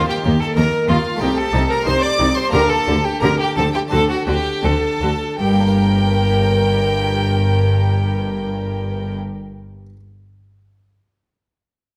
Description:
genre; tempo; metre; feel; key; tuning
classical, baroque-style concerto movement with solo episodes; 79-96 BPM; 4/4; straight; G minor; A4 = 443 Hz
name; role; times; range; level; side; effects
rich violin; melody; 0.0-9.2 s; F4 to G5; -25 LUFS; equal; none
rich studio violin section; second line; 0.0-9.2 s; F4 to D5; -28 LUFS; equal; none
harpsichord; accompaniment; 0.0-10.0 s; G2 to Bb4; -26 LUFS; equal; none
rich studio double bass section; bass; 0.0-9.2 s; G1 to Eb2; -25 LUFS; equal; none
rich chamber violin section; melody; 0.1-9.2 s; F5 to D6; -29 LUFS; equal; none
rich chamber cello section; bass; 0.2-9.2 s; G2 to Eb3; -24 LUFS; equal; none
rich chamber viola section; accompaniment; 0.3-9.2 s; Bb3 to Bb4; -27 LUFS; equal; none
room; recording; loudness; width
wet recital hall reverb, RT60 1.3 s; none; -18 LUFS; mono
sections
0.0-5.4 A section; 5.4-8.4 B section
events
slowing down 0.0-5.4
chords
0.0 Eb5; 1.2 Adim/C; 2.5 Gm/D; 3.9 D7; 5.4 Gm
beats
0.57 1.21 1.86 | 2.53 3.21 3.91 4.63 | 5.39 6.13 6.89 7.64

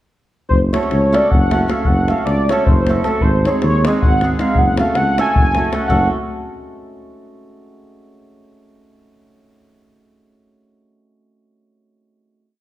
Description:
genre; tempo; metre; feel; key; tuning
balkan folk, Balkan wedding band; 314 BPM (eighths); 7/8; straight; F# hungarian minor; A4 = 438 Hz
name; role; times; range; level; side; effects
warm velvety synth lead; melody; 0.5-6.1 s; A4 to G#5; -18 LUFS; equal; chorus
breathy tuba; bass; 0.5-6.1 s; F#1 to D#2; -18 LUFS; equal; none
davul; percussion; 0.5-6.1 s; none; -18 LUFS; left 1 dB; none
hammered dulcimer; accompaniment; 0.7-6.1 s; G#3 to A4; -21 LUFS; right 2 dB; none
room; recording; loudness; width
moderate recital hall reverb, RT60 1.5 s; dark, warm production; -13 LUFS; side -14 dB against mid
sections
0.5-5.9 A section; 5.9-7.2 final chord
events
none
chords
0.5 F#m; 3.2 G#; 4.6 F#m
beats
| 0.51 0.70 0.89 1.09 1.28 1.48 1.67 | 1.87 2.06 2.25 2.45 2.64 2.84 3.03 | 3.22 3.42 3.61 3.80 3.99 4.18 4.37 | 4.56 4.75 4.94 5.13 5.32 5.51 5.70 | 5.88 6.07

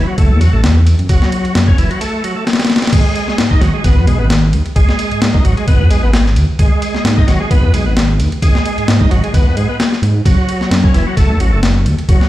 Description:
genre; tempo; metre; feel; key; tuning
breakbeat, breaks; 131 BPM; 4/4; swing 55% on 16ths; G# phrygian; A4 = 439 Hz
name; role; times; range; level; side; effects
bright tonewheel organ; riff; 0.0-12.3 s; E3 to D#4; -19 LUFS; equal; chorus vibrato, slow rotary speaker, overdrive, tape echo
dark detuned saw bass; bass; 0.0-12.2 s; F#1 to G#2; -13 LUFS; equal; none
breakbeat sampler-style drum kit; drums; 0.2-12.3 s; crash cymbal, kick drum, ride cymbal, snare drum; -13 LUFS; equal; small room reverb
room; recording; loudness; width
light reverb; played on a big sound system in a bare room, stone room reverb; -10 LUFS; side -15 dB against mid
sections
0.0-2.9 A section; 2.9-12.3 B section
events
break 2.0-2.9; drop 2.9-12.3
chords
0.0 F#m7; 2.9 G#m7; 10.3 F#m7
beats
0.18 0.64 | 1.09 1.55 2.01 2.47 | 2.93 3.38 3.84 4.30 | 4.76 5.22 5.67 6.13 | 6.59 7.05 7.51 7.96 | 8.42 8.88 9.34 9.80 | 10.25 10.71 11.17 11.63 | 12.09

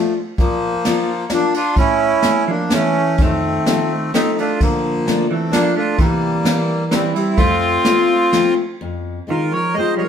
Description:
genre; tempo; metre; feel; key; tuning
musette waltz; 128 BPM; 3/4; rubato; F major; A4 = 441 Hz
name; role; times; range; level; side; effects
accordion; melody; 0.0-10.1 s; F3 to Eb5; -18 LUFS; equal; none
fingerpicked steel-string acoustic guitar; accompaniment; 0.0-10.0 s; F2 to F4; -22 LUFS; left 4 dB; none
jazz brush drum kit; drums; 0.4-8.4 s; kick drum, ride cymbal, snare drum; -20 LUFS; equal; none
vintage hollow-body jazz guitar; second line; 2.5-10.1 s; D3 to A3; -21 LUFS; right 2 dB; none
room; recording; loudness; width
wet studio reverb, RT60 0.9 s; band playing live in one room; -14 LUFS; side -8 dB against mid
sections
0.0-8.8 A section; 8.8-10.1 B section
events
none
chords
0.4 Bb; 1.8 A7; 3.2 F7; 4.6 Bbmaj7; 6.0 C; 7.4 F; 8.8 Fm7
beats
| 0.39 0.85 1.31 | 1.77 2.24 2.71 | 3.19 3.66 4.13 | 4.60 5.06 5.52 | 5.98 6.45 6.92 | 7.38 7.86 8.34 | 8.82 9.30 9.77

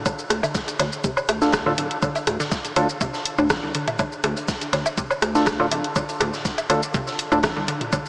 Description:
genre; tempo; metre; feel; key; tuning
minimal techno; 122 BPM; 4/4; straight; D minor; A4 = 443 Hz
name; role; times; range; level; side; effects
hollow square pluck; riff; 0.1-8.0 s; C3 to D4; -27 LUFS; equal; chorus, sidechain pumping, diffuse ambient delay
big rock drum kit; drums; 0.1-8.0 s; hi-hat, shaker, snare drum; -35 LUFS; equal; high-pass filter on hats, high-pass filter on snare, high-pass filter on perc, high-pass filter on room
electronic kick drum; drums; 0.1-8.0 s; none; -26 LUFS; equal; none
punchy analog drum machine; drums; 0.1-8.1 s; hi-hat, rim click, shaker; -27 LUFS; equal; none
techno drum kit; percussion; 0.1-8.0 s; rim click, toms, woodblock; -26 LUFS; equal; overdrive, tape echo
rubbery square bass; bass; 0.3-7.7 s; D1 to D2; -29 LUFS; equal; sidechain pumping
percussive organ stab; stabs; 1.4-7.4 s; D4 to A4; -26 LUFS; equal; chorus, tape echo
room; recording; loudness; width
wet huge ambient reverb, RT60 4.8 s; dreamy mix soaked in reverb, small speaker sound; -20 LUFS; side -27 dB against mid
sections
0.0-8.1 A section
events
none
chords
0.0 Dm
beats
| 0.06 0.55 1.04 1.53 | 2.02 2.52 3.01 3.50 | 3.99 4.48 4.98 5.47 | 5.96 6.45 6.94 7.43 | 7.93

